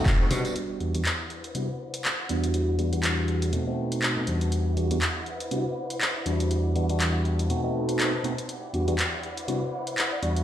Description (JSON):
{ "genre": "filtered disco house", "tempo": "121 BPM", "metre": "4/4", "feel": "swing 57% on 16ths", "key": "E minor", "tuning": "A4 = 440 Hz", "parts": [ { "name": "barky tine electric piano", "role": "accompaniment", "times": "0.0-10.4 s", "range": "E2 to F#4", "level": "-26 LUFS", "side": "equal", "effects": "phaser, sidechain pumping, low-pass filter" }, { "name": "warm symphonic violin section", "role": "sustained chords", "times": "0.0-10.4 s", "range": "G3 to A5", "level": "-36 LUFS", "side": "left 1 dB", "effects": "vintage 12-bit sampler grit, sidechain pumping, low-pass filter" }, { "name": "punchy analog drum machine", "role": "drums", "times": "0.1-10.4 s", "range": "handclaps, hi-hat, tambourine", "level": "-29 LUFS", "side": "equal", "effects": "sidechain pumping on hats, sidechain pumping on perc" }, { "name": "tambourine", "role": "percussion", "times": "0.1-0.5, 8.5-10.4 s", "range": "none", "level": "-48 LUFS", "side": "right 4 dB", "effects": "none" }, { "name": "hollow concert flute", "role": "melody", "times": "10.1-10.3 s", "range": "D5", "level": "-33 LUFS", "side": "left 2 dB", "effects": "sidechain pumping, low-pass filter" } ], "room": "moderate plate reverb, RT60 1.6 s, digital ambience", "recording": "played on a big sound system in a bare room, large studio reverb", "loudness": "-24 LUFS", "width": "side -11 dB against mid", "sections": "0.6-10.4 A section", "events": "band accent 0.1; filter sweep 0.6-10.4", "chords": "0.0 B7b9; 0.6 Em9; 1.3 Cmaj9#11; 2.5 Em9; 3.5 B7b9; 4.5 Em9; 5.3 Cmaj9#11; 6.5 Em9; 7.5 B7b9; 8.5 Em9; 9.2 Cmaj9#11" }